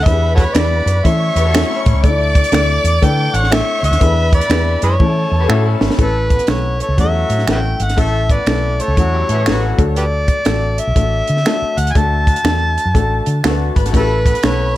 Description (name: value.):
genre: uptempo 1960s-style soul.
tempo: 121 BPM.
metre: 4/4.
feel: swing 64% on 8ths.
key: D major.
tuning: A4 = 436 Hz.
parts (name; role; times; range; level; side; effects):
overdriven harmonica; melody; 0.0-14.8 s; F#4 to A5; -19 LUFS; equal; tape echo.
warm studio violin section; second line; 0.0-6.0, 13.9-14.8 s; A4 to D6; -24 LUFS; right 1 dB; none.
vintage muted fingered electric bass; bass; 0.0-14.8 s; G#1 to E3; -17 LUFS; equal; none.
dark upright piano; accompaniment; 0.1-14.8 s; A3 to E5; -22 LUFS; left 6 dB; tube saturation.
compact cocktail drum kit; drums; 0.1-14.6 s; hi-hat, kick drum, snare drum; -16 LUFS; right 1 dB; none.
finger snap; percussion; 0.6-14.6 s; none; -22 LUFS; right 5 dB; none.
electric guitar through a small old amp; riff; 1.4-2.0, 5.4-6.0, 9.1-9.9, 13.4-14.1 s; C#4 to C#5; -24 LUFS; left 7 dB; spring reverb.
mellow horn section; second line; 4.8-9.9, 13.9-14.7 s; E3 to B4; -25 LUFS; equal; none.
room: light reverb.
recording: none.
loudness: -12 LUFS.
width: side -15 dB against mid.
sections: 0.0-6.0 A section; 6.0-14.8 B section.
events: band accent 4.0-6.0; drum fill 5.0-6.0.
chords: 0.1 E7; 1.0 A/E; 2.0 Dsus2; 4.0 E7; 5.0 A/E; 6.0 A; 9.7 D; 13.9 A.